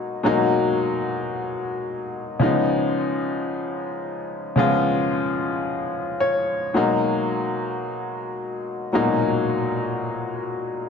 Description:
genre	disco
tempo	free time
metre	none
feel	none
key	G# dorian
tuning	A4 = 438 Hz
part	clear baby grand piano	solo	0.0-10.9 s	A#2 to C#5	-21 LUFS	left 2 dB	slapback echo
room	moderate large studio reverb, RT60 1.1 s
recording	none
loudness	-21 LUFS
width	side -6 dB against mid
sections	0.0-10.9 A section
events	grand piano fill 5.9-6.8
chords	0.0 G#m9; 2.4 C#9; 6.8 G#m9

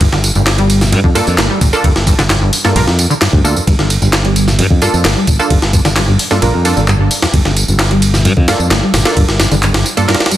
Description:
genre	breakbeat, breaks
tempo	131 BPM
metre	4/4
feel	straight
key	G minor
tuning	A4 = 440 Hz
part	deep acid bass	riff	0.0-10.4 s	F2 to Bb3	-16 LUFS	equal	wide subtle chorus, tape echo
part	modern bright fingered electric bass	bass	0.0-9.8 s	G1 to G2	-14 LUFS	equal	none
part	breakbeat sampler-style drum kit	drums	0.0-10.4 s	hi-hat, kick drum, ride cymbal, snare drum	-14 LUFS	equal	none
part	electronic tambourine and handclaps	drums	0.0-10.4 s	none	-20 LUFS	right 1 dB	none
part	filtered dub chord stab	stabs	1.2-10.2 s	Bb3 to Bb4	-18 LUFS	right 2 dB	chorus, cassette tape, tape echo
room	light reverb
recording	dense, heavily limited modern master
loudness	-9 LUFS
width	side -13 dB against mid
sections	0.0-10.4 A section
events	none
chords	0.0 Gm9

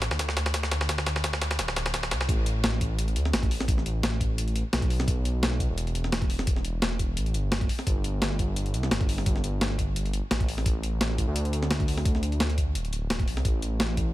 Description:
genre	liquid drum and bass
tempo	172 BPM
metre	4/4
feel	swing 54% on 16ths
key	A minor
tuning	A4 = 441 Hz
part	dark detuned saw bass	bass	0.0-14.1 s	D1 to D2	-28 LUFS	equal	none
part	breakbeat sampler-style drum kit	drums	0.0-14.0 s	hi-hat, snare drum	-29 LUFS	equal	high-pass filter on snare, high-pass filter on hats, high-pass filter on room
part	electronic kick drum	drums	0.2-14.0 s	none	-27 LUFS	equal	high-pass filter on kick, high-pass filter on room
room	little or no reverb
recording	none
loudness	-24 LUFS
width	side -16 dB against mid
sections	0.0-2.3 A section; 2.3-14.1 B section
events	build-up 0.0-2.3; drum fill 0.0-2.3; drop 2.3-14.1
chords	none

